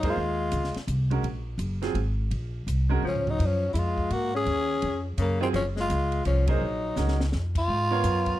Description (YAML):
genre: modal jazz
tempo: 168 BPM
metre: 3/4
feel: swing 64% on 8ths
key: Eb dorian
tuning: A4 = 441 Hz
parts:
  - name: growling tenor saxophone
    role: melody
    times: 0.0-0.8, 3.1-8.4 s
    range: Bb3 to Ab4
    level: -28 LUFS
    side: equal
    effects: plate reverb
  - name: warm alto saxophone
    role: second line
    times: 0.0-0.8, 3.0-7.3 s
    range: Db3 to Db4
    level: -32 LUFS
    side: left 5 dB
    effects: none
  - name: bright grand piano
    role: accompaniment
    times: 0.0-3.0, 5.4-8.4 s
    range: Gb3 to C#5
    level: -31 LUFS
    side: right 6 dB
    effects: none
  - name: upright bass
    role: bass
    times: 0.0-8.4 s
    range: Gb1 to Ab2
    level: -27 LUFS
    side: equal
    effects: none
  - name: compact cocktail drum kit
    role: drums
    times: 0.0-8.3 s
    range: crash cymbal, hi-hat, kick drum, ride cymbal, snare drum, toms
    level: -36 LUFS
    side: equal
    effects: none
room: light reverb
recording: dark, warm production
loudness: -24 LUFS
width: side -14 dB against mid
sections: 0.0-7.7 A section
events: band accent 0.0, 6.4; drum fill 3.0-3.4, 7.0-7.3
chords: 0.0 Ebm11; 7.7 G#13sus4